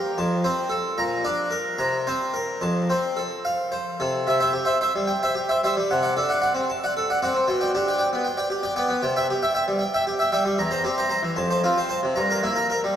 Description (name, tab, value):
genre	classical, baroque-style suite movement for harpsichord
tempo	76 BPM (dotted quarters)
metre	6/8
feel	rubato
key	F major, C major from 4.3 s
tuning	A4 = 440 Hz
part	harpsichord	solo	0.0-13.0 s	E2 to Bb5	-21 LUFS	equal	none
room	wet cathedral reverb, RT60 5.7 s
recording	none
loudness	-21 LUFS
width	side -9 dB against mid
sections	0.0-4.3 A section; 4.3-13.0 A section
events	none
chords	0.2 F; 1.0 Bb; 1.8 Bbsus2/C; 2.6 F; 4.3 C; 5.9 D7/C; 7.5 G/B; 9.0 C; 10.6 C7/E; 11.4 F; 12.2 Edim/G